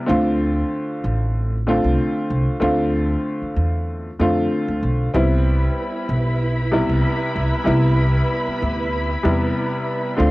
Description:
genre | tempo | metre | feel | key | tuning
hip hop | 95 BPM | 4/4 | swing 54% on 16ths | C major | A4 = 440 Hz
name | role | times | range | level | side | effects
warm upright piano | accompaniment | 0.0-10.3 s | C3 to F4 | -21 LUFS | equal | high-pass filter, low-pass filter, cassette tape
upright bass | bass | 0.1-10.3 s | A1 to F2 | -20 LUFS | equal | none
warm studio string section | sustained chords | 5.1-10.3 s | E4 to C6 | -26 LUFS | right 1 dB | high-pass filter, low-pass filter, cassette tape
room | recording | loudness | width
moderate booth ambience, RT60 0.2 s | home recording on cassette | -18 LUFS | side -19 dB against mid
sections
0.0-5.1 A section; 5.1-10.3 A section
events
none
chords
0.1 Dm7; 5.1 Cmaj7

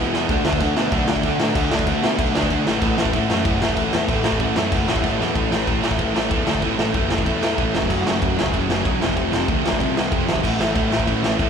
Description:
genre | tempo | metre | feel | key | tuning
punk rock | 189 BPM | 4/4 | straight | unclear | A4 = 441 Hz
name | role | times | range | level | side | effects
crunchy overdriven guitar | riff | 0.0-11.5 s | E2 to D4 | -24 LUFS | left 7 dB | none
distorted electric guitar | riff | 0.0-11.5 s | E2 to D4 | -23 LUFS | right 8 dB | overdrive
fuzz picked electric bass | bass | 0.0-11.5 s | E1 to B2 | -26 LUFS | equal | overdrive
raw garage drum kit | drums | 0.1-11.5 s | crash cymbal, kick drum, ride cymbal, snare drum | -22 LUFS | equal | none
room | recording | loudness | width
moderate large studio reverb, RT60 1.2 s | band playing live in one room | -18 LUFS | side -7 dB against mid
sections
0.0-5.4 A section; 5.4-11.5 B section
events
drum fill 0.0, 5.0-5.4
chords
0.3 D5; 2.7 A5; 7.7 F#5; 9.0 F5; 10.4 A5

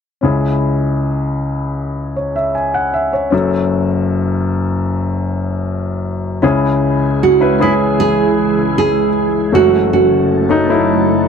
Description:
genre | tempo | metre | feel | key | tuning
pop | 78 BPM | 4/4 | straight | C# minor | A4 = 442 Hz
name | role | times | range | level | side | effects
clear baby grand piano | accompaniment | 0.2-11.3 s | F#1 to G#5 | -15 LUFS | left 2 dB | none
glassy FM pad | sustained chords | 7.0-11.3 s | C#3 to A4 | -17 LUFS | right 2 dB | ensemble chorus, built-in reverb
nylon-string guitar | melody | 7.2-11.3 s | E4 to G#4 | -14 LUFS | right 6 dB | slapback echo
room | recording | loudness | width
moderate booth ambience, RT60 0.2 s | dry, close 1970s-style studio recording | -13 LUFS | side -6 dB against mid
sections
0.2-6.4 A section; 6.4-11.3 B section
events
none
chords
0.2 C#m; 3.3 F#m; 6.4 C#m; 9.5 F#m

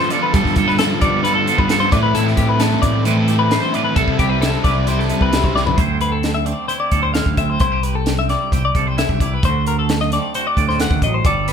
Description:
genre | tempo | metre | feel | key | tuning
math rock and midwest emo | 132 BPM | 4/4 | straight | unclear | A4 = 440 Hz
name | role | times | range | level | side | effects
twangy electric guitar | accompaniment | 0.0-11.5 s | A2 to D5 | -24 LUFS | right 7 dB | tremolo
twelve-string electric guitar | arpeggios | 0.0-11.5 s | G4 to F#5 | -21 LUFS | left 5 dB | none
crunchy overdriven guitar | riff | 0.0-5.8 s | G2 to F4 | -20 LUFS | equal | none
crisp fusion drum kit | drums | 0.0-11.5 s | hi-hat, kick drum, snare drum, toms | -20 LUFS | equal | none
growling picked electric bass | bass | 0.3-11.5 s | G1 to G3 | -20 LUFS | right 1 dB | overdrive
room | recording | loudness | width
moderate large studio reverb, RT60 1.2 s | band playing live in one room | -14 LUFS | side -7 dB against mid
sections
0.0-5.8 A section; 5.8-11.5 B section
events
drum fill 5.6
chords
0.0 G9; 1.9 Am9; 4.0 Cmaj9; 5.8 Dm9; 7.6 Cmaj9; 9.4 D7b9

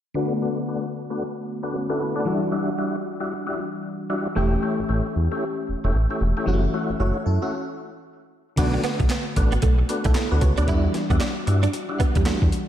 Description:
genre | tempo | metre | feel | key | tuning
R&B, new jack swing | 114 BPM | 4/4 | swing 61% on 16ths | unclear | A4 = 439 Hz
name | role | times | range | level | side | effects
FM electric piano | accompaniment | 0.1-12.7 s | D3 to D5 | -27 LUFS | left 1 dB | chorus, phaser, low-pass filter
percussive tonewheel organ | stabs | 0.2-12.0 s | G3 to G4 | -28 LUFS | left 2 dB | chorus vibrato, fast rotary speaker, low-pass filter, ping-pong delay
smooth synth bass | bass | 4.4-12.5 s | E1 to G2 | -21 LUFS | equal | none
boom bap sampler-style drum kit | drums | 8.6-12.7 s | crash cymbal, handclaps, hi-hat, kick drum, snare drum | -23 LUFS | equal | overdrive
direct-recorded clean electric guitar | riff | 8.7-12.4 s | G3 to E4 | -29 LUFS | right 5 dB | ensemble chorus
room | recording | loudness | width
moderate lush hall reverb, RT60 1.7 s | dreamy mix soaked in reverb | -21 LUFS | side -11 dB against mid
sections
0.2-8.6 A section; 8.6-12.7 B section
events
filter sweep 0.2-8.6; stop 7.5-8.6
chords
0.2 Bm7; 2.3 Em9; 4.4 A7/E; 6.5 F#m7; 8.6 Bm7; 10.7 Em9

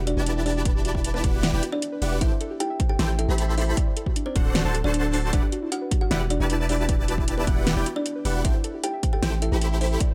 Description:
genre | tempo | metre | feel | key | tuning
future bass | 154 BPM | 4/4 | half-time | E minor | A4 = 440 Hz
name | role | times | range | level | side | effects
long sustained 808-style bass | bass | 0.0-10.0 s | D1 to A1 | -28 LUFS | equal | sidechain pumping
kalimba | melody | 0.1-9.9 s | B3 to G5 | -33 LUFS | equal | sidechain pumping, dub echo
soft round pluck | arpeggios | 0.1-10.1 s | D4 to E5 | -37 LUFS | equal | chorus, sidechain pumping, delay
pop drum kit | drums | 0.1-10.1 s | hi-hat, snare drum | -31 LUFS | equal | none
dense compressed supersaw | riff | 0.2-10.0 s | D4 to B5 | -32 LUFS | equal | sidechain pumping
electronic kick drum | drums | 0.7-10.1 s | none | -26 LUFS | equal | none
room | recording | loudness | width
little or no reverb | none | -24 LUFS | mono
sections
0.0-10.1 A section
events
none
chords
0.0 Em9; 2.2 Am7; 3.8 D7; 5.3 Em9; 8.4 Am7

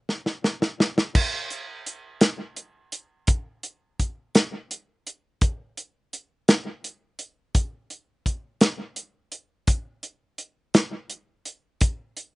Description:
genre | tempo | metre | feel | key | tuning
rock | 56 BPM (dotted quarters) | 6/8 | straight | none | none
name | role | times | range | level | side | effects
natural country drum kit | drums | 0.1-12.3 s | crash cymbal, hi-hat, kick drum, snare drum | -20 LUFS | equal | none
room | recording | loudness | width
little or no reverb | recorded outdoors, with no room sound, nothing above 10.6 kHz | -22 LUFS | side -22 dB against mid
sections
0.0-1.1 A section; 1.1-12.3 A section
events
drum fill 0.1-1.1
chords
none

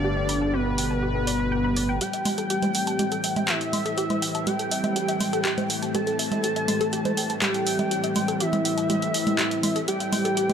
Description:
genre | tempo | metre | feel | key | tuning
melodic techno | 122 BPM | 4/4 | straight | A minor | A4 = 435 Hz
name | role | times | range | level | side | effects
fat analog lead | melody | 0.0-10.5 s | B3 to A4 | -28 LUFS | equal | analog chorus, dub echo
airy dreamy lead | second line | 0.0-10.5 s | B4 to A5 | -30 LUFS | left 1 dB | chorus, tape echo
lush unison pad | sustained chords | 0.0-10.5 s | D3 to G4 | -32 LUFS | left 2 dB | chorus, phaser
tight sequenced synth | arpeggios | 0.0-10.5 s | G4 to C6 | -32 LUFS | equal | chorus, phaser, tape echo
swelling detuned saw bass | bass | 0.0-2.0 s | G1 | -29 LUFS | equal | none
bowed-like drone | drone | 0.5-10.5 s | A2 to F3 | -38 LUFS | equal | built-in reverb
punchy analog drum machine | drums | 0.3-10.5 s | congas, handclaps, hi-hat | -26 LUFS | right 2 dB | none
room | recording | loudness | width
light reverb | none | -22 LUFS | side -8 dB against mid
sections
0.0-2.0 A section; 2.0-10.5 B section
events
filter sweep on synth arpeggio sound 0.0-2.0; filter sweep on analog synth lead 0.0-2.0, 2.0-10.5; build-up 2.0-10.5; filter sweep on analog synth pad 2.0-10.5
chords
0.0 Gadd9; 2.0 Am7; 9.9 Fadd9 (rootless)

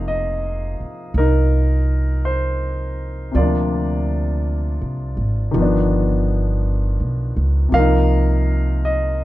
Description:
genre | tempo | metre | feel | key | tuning
jazz ballad | 55 BPM | 4/4 | swing 68% on 8ths | F minor | A4 = 440 Hz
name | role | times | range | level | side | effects
warm concert grand piano | accompaniment | 0.0-9.2 s | C3 to F5 | -21 LUFS | left 1 dB | none
upright bass | bass | 0.0-9.2 s | F1 to D2 | -19 LUFS | equal | none
room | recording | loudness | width
light reverb | dark, warm production | -17 LUFS | side -16 dB against mid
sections
0.0-9.2 A section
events
none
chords
0.0 Fm7; 3.3 Dm7b5; 5.5 G7b13; 7.7 Cm7

